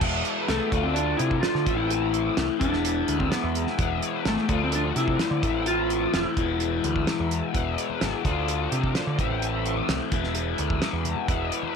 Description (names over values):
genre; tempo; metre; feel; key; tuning
psychedelic rock; 128 BPM; 4/4; straight; E phrygian dominant; A4 = 440 Hz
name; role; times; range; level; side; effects
tonewheel organ; sustained chords; 0.0-11.8 s; F3 to E5; -34 LUFS; right 14 dB; slow rotary speaker, chorus vibrato
raw garage guitar; riff; 0.0-11.8 s; E2 to F4; -28 LUFS; left 12 dB; overdrive, flanger
growling picked electric bass; bass; 0.0-11.5 s; E1 to D3; -29 LUFS; right 1 dB; overdrive
damped 70s drum kit; drums; 0.0-11.6 s; crash cymbal, hi-hat, kick drum, snare drum; -29 LUFS; right 2 dB; none
electric slide guitar; melody; 0.5-7.3 s; A3 to F4; -27 LUFS; left 2 dB; tape echo
congas; percussion; 7.9-11.7 s; none; -40 LUFS; left 9 dB; none
room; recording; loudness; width
small room ambience; 1960s-style stereo with parts hard left and right; -23 LUFS; side -6 dB against mid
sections
0.0-11.8 A section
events
none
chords
0.0 E; 0.7 Dm7; 1.7 Am; 2.6 E; 4.5 Dm7; 5.4 Am; 6.4 E; 8.2 Dm7; 9.2 Am; 10.1 E